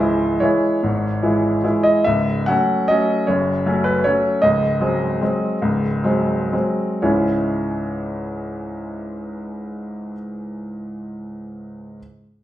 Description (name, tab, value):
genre	classical, piano waltz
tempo	107-166 BPM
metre	3/4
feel	rubato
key	C# minor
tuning	A4 = 445 Hz
part	bright grand piano	solo	0.0-12.0 s	C#1 to F#5	-18 LUFS	equal	none
room	wet large studio reverb, RT60 0.8 s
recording	heard from further back in the room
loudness	-17 LUFS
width	side -13 dB against mid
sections	0.0-2.1 A section; 2.1-7.0 B section; 7.0-9.8 C section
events	slowing down 3.9-7.0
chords	0.0 C#m; 2.1 F#m/C#; 4.4 G#7/C#; 7.0 C#m